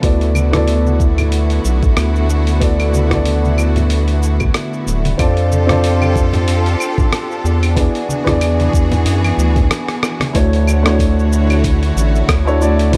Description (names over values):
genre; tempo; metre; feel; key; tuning
sunset chillout; 93 BPM; 4/4; swing 56% on 16ths; D lydian; A4 = 440 Hz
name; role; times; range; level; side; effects
dark baby grand piano; accompaniment; 0.0-13.0 s; A3 to D5; -22 LUFS; equal; tape echo
clear studio string section; sustained chords; 0.0-13.0 s; C3 to C#5; -24 LUFS; equal; none
round analog bass; bass; 0.0-13.0 s; D1 to F#2; -17 LUFS; equal; none
dusty soul sampler-style drum kit; drums; 0.0-13.0 s; cabasa, claves, hi-hat, rim click; -25 LUFS; equal; none
electronic kick drum; drums; 0.0-13.0 s; none; -19 LUFS; equal; none
congas; percussion; 0.3-10.3 s; none; -26 LUFS; equal; none
room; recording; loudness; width
light reverb, small room ambience; dark, warm production; -15 LUFS; mono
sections
0.0-10.3 A section; 10.3-13.0 B section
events
break 9.7-10.3; drum fill 9.9-10.3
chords
0.0 D69; 5.2 F6; 7.8 E7; 10.3 Dmaj9